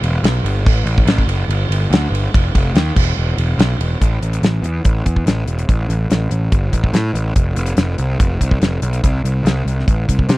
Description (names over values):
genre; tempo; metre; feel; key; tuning
classic rock; 143 BPM; 4/4; straight; A minor; A4 = 440 Hz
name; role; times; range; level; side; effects
fuzz picked electric bass; bass; 0.0-10.4 s; E1 to C3; -17 LUFS; equal; overdrive
damped 70s drum kit; drums; 0.0-10.4 s; crash cymbal, hi-hat, kick drum, ride cymbal, snare drum; -16 LUFS; equal; none
room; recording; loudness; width
little or no reverb; dry, close 1970s-style studio recording; -14 LUFS; side -19 dB against mid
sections
0.0-4.0 A section; 4.0-10.4 B section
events
none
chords
none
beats
0.24 | 0.66 1.08 1.50 1.92 | 2.33 2.75 3.17 3.59 | 4.01 4.43 4.84 5.26 | 5.68 6.10 6.52 6.94 | 7.36 7.78 8.20 8.62 | 9.04 9.46 9.88 10.30